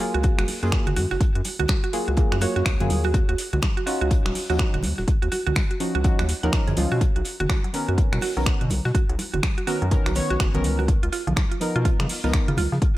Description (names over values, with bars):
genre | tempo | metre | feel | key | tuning
deep house | 124 BPM | 4/4 | swing 61% on 16ths | F# major | A4 = 439 Hz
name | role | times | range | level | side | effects
deep mellow chord stab | stabs | 0.0-12.5 s | D#3 to C#5 | -28 LUFS | equal | chorus, tape echo
house drum kit | drums | 0.0-12.9 s | finger snaps, hi-hat | -30 LUFS | right 1 dB | none
mallet-like synth pluck | arpeggios | 0.1-12.8 s | E#3 to F#5 | -29 LUFS | right 4 dB | chorus, sidechain pumping, tape echo
round analog bass | bass | 0.1-12.8 s | D#1 to C#3 | -25 LUFS | equal | sidechain pumping
electronic kick drum | drums | 0.2-12.9 s | none | -22 LUFS | equal | none
warm soul drum kit | drums | 0.2-13.0 s | hi-hat, snare drum | -40 LUFS | left 3 dB | sidechain pumping on hats, high-pass filter on hats, high-pass filter on snare, high-pass filter on room
congas | percussion | 0.4-12.8 s | none | -31 LUFS | right 2 dB | none
room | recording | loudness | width
studio reverb | none | -20 LUFS | side -16 dB against mid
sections
0.0-13.0 A section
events
none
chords
0.0 F#maj9; 3.1 D#m9; 7.0 Bmaj9; 10.9 C#13